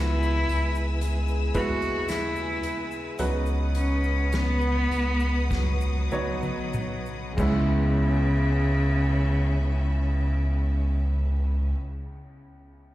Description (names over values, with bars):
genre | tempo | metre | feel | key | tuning
pop ballad | 45-58 BPM | 4/4 | straight | C# minor | A4 = 439 Hz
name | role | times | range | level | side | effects
warm cello | melody | 0.0-11.8 s | C#3 to F#4 | -28 LUFS | equal | ping-pong delay
clear grand piano | accompaniment | 0.0-12.9 s | C#2 to C#5 | -33 LUFS | right 1 dB | slapback echo
bright studio string section | sustained chords | 0.0-11.8 s | C#4 to E6 | -38 LUFS | left 3 dB | none
fingerpicked steel-string acoustic guitar | arpeggios | 0.0-11.9 s | C#3 to B4 | -36 LUFS | right 2 dB | none
round analog bass | bass | 0.0-11.7 s | B1 to D#2 | -25 LUFS | equal | none
egg shaker | percussion | 0.2-8.7 s | none | -54 LUFS | left 2 dB | none
unplugged drum kit | drums | 0.5-7.7 s | crash cymbal, hi-hat, kick drum, snare drum, toms | -33 LUFS | equal | none
room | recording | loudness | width
light reverb | live gig heard through the venue's PA, recital hall reverb | -23 LUFS | side -15 dB against mid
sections
0.0-8.0 A section; 8.0-12.9 B section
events
slowing down 0.0-8.0; drum fill 5.5-8.0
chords
0.0 E/C#; 3.2 B/C#; 7.4 C#m7